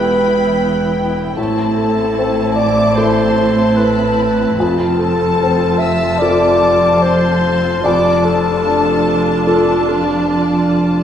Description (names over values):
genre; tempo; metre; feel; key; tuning
cinematic; 74 BPM; 4/4; rubato; A minor; A4 = 440 Hz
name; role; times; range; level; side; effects
warm studio violin section; melody; 0.0-11.0 s; G5 to A5; -23 LUFS; left 4 dB; none
mellow clarinet; second line; 0.0-11.0 s; D4 to E5; -16 LUFS; left 1 dB; none
warm studio violin section; second line; 0.0-11.0 s; D5 to E6; -25 LUFS; left 3 dB; none
felt-muted upright piano; accompaniment; 0.0-11.0 s; E2 to A4; -20 LUFS; left 2 dB; none
warm studio viola section; accompaniment; 0.0-11.0 s; B3 to F4; -23 LUFS; right 3 dB; none
rich studio double bass section; bass; 0.0-11.0 s; E1 to A1; -21 LUFS; right 2 dB; none
warm studio cello section; bass; 0.0-11.0 s; E2 to A2; -20 LUFS; right 2 dB; none
room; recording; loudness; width
wet scoring stage reverb, RT60 1.9 s; heard from further back in the room; -12 LUFS; side -9 dB against mid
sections
0.0-11.0 A section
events
none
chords
0.0 Em; 1.4 Am; 4.6 F; 7.8 Dm/F